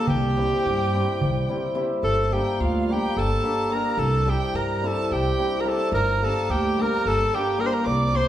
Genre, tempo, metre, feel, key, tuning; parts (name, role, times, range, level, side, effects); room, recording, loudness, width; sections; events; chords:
balkan folk, Balkan wedding band; 216 BPM (eighths); 7/8; straight; A4 = 440 Hz
warm alto saxophone; melody; 0.0-8.3 s; F4 to D5; -25 LUFS; right 1 dB
rich violin; second line; 0.0-8.3 s; F5 to D6; -33 LUFS; right 3 dB
cimbalom; accompaniment; 0.0-8.3 s; G3 to G4; -26 LUFS; left 1 dB
upright bass; bass; 0.1-8.2 s; G1 to G2; -26 LUFS; equal
darbuka; percussion; 0.1-2.0 s; -29 LUFS; equal
wet recital hall reverb, RT60 1.7 s; heard from further back in the room; -21 LUFS; side -11 dB against mid
0.0-2.0 A section; 2.0-8.3 A section
0.1 C; 2.0 Gm; 4.0 C; 5.9 Gm